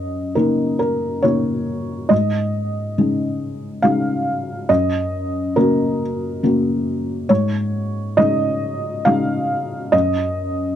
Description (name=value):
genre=neoclassical minimalist piano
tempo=69 BPM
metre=3/4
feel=rubato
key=unclear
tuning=A4 = 440 Hz
part: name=felt-muted upright piano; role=solo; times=0.0-10.8 s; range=Gb2 to F5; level=-17 LUFS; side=equal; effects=none
room=light reverb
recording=dry, close 1970s-style studio recording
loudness=-17 LUFS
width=side -10 dB against mid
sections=0.0-10.8 A section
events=none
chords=0.0 Ebm7/Gb; 2.1 Absus4; 4.7 Gb; 7.3 Absus4; 9.9 Ebm/Gb